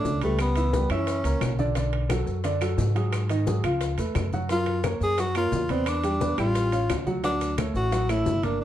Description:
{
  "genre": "Afro-Cuban jazz",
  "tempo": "175 BPM",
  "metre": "4/4",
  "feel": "straight",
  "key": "D major",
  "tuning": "A4 = 439 Hz",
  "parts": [
    { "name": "warm tenor saxophone", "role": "melody", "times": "0.0-1.6, 4.5-8.6 s", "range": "A3 to G#4", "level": "-26 LUFS", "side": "left 1 dB", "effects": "none" },
    { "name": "warm baby grand piano", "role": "accompaniment", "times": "0.0-8.6 s", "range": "D3 to G5", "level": "-29 LUFS", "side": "right 2 dB", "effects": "none" },
    { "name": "upright bass", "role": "bass", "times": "0.0-8.6 s", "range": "G1 to G#2", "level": "-27 LUFS", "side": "equal", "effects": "none" },
    { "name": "bongos", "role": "percussion", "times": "0.0-8.4 s", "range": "none", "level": "-36 LUFS", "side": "left 7 dB", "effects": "none" },
    { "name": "congas", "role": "percussion", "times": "0.1-8.6 s", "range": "none", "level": "-34 LUFS", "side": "left 3 dB", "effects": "none" },
    { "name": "maracas", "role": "percussion", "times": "0.1-8.6 s", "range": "none", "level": "-45 LUFS", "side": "left 3 dB", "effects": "none" },
    { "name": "timbales", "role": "percussion", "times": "0.2-8.6 s", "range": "none", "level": "-39 LUFS", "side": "right 6 dB", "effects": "none" },
    { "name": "claves", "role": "percussion", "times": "0.4-8.3 s", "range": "none", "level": "-40 LUFS", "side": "left 1 dB", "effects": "none" }
  ],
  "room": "light reverb",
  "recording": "dark, warm production",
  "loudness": "-23 LUFS",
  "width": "side -12 dB against mid",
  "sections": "0.0-8.6 A section",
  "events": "none",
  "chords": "0.4 C#m7b5; 1.1 F#7; 1.8 Bm7; 3.1 G#5; 3.8 C#7alt; 4.5 F#maj7; 5.9 Em7; 6.6 Aaug7; 7.2 Dmaj7"
}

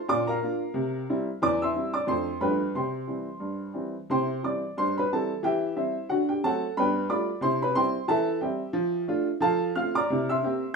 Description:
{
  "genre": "jazz, stride piano",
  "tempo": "180 BPM",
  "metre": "4/4",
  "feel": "swing 58% on 8ths",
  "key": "C major",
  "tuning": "A4 = 440 Hz",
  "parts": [
    { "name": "clear upright piano", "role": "solo", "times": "0.0-10.7 s", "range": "E2 to F6", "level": "-25 LUFS", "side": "right 1 dB", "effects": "none" }
  ],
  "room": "wet studio reverb, RT60 0.5 s",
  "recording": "rough home demo mix, small room ambience",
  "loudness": "-25 LUFS",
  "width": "side -4 dB against mid",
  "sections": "0.0-4.1 A section; 4.1-10.8 B section",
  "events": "none",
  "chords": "0.1 Bb; 0.8 C7; 1.4 C/E; 2.1 Dm/F; 2.4 G9; 2.8 C; 5.4 C/E; 6.1 D7; 6.8 G9; 7.4 C; 8.1 C/E; 8.8 Dm/F; 9.4 F; 10.1 C7"
}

